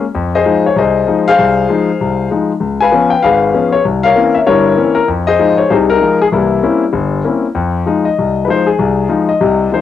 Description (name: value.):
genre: jazz.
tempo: 194 BPM.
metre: 4/4.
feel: swing 61% on 8ths.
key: F minor.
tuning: A4 = 440 Hz.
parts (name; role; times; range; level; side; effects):
warm concert grand piano; solo; 0.0-9.8 s; G1 to Ab5; -10 LUFS; left 4 dB; cassette tape.
room: moderate studio reverb, RT60 0.6 s.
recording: home recording on cassette.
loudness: -10 LUFS.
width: side -10 dB against mid.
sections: 0.0-7.6 A section; 7.6-9.8 B section.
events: grand piano solo 7.6-9.8.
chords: 0.1 Fm7; 2.6 Db7; 3.9 C7b9; 5.1 Fm7; 6.3 C7b9; 7.6 Fm7.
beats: | 0.14 0.45 0.76 1.07 | 1.38 1.69 2.00 2.31 | 2.62 2.92 3.23 3.54 | 3.85 4.16 4.47 4.78 | 5.09 5.39 5.70 6.01 | 6.32 6.63 6.94 7.25 | 7.56 7.87 8.17 8.48 | 8.79 9.10 9.41 9.72.